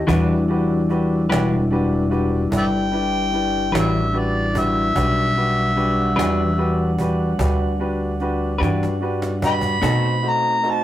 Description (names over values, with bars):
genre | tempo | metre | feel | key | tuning
slow blues | 49 BPM (dotted quarters) | 12/8 | straight | E minor | A4 = 438 Hz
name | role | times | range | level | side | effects
clear upright piano | accompaniment | 0.0-10.8 s | A3 to C5 | -26 LUFS | equal | none
mellow tonewheel organ | sustained chords | 0.0-10.8 s | G3 to F#5 | -24 LUFS | left 1 dB | slow rotary speaker
upright bass | bass | 0.0-10.8 s | E1 to B2 | -22 LUFS | equal | none
clean electric guitar | accompaniment | 0.1-10.1 s | E3 to C5 | -22 LUFS | left 1 dB | tremolo
cajon | drums | 0.1-10.7 s | none | -28 LUFS | equal | none
mellow harmonica | melody | 2.6-10.8 s | D5 to B5 | -21 LUFS | left 1 dB | overdrive
room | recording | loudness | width
moderate studio reverb, RT60 0.6 s | rough rehearsal-room recording, tube saturation | -17 LUFS | side -12 dB against mid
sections
0.0-10.8 A section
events
drum fill 8.6-9.8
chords
0.1 Em7; 9.8 B7b9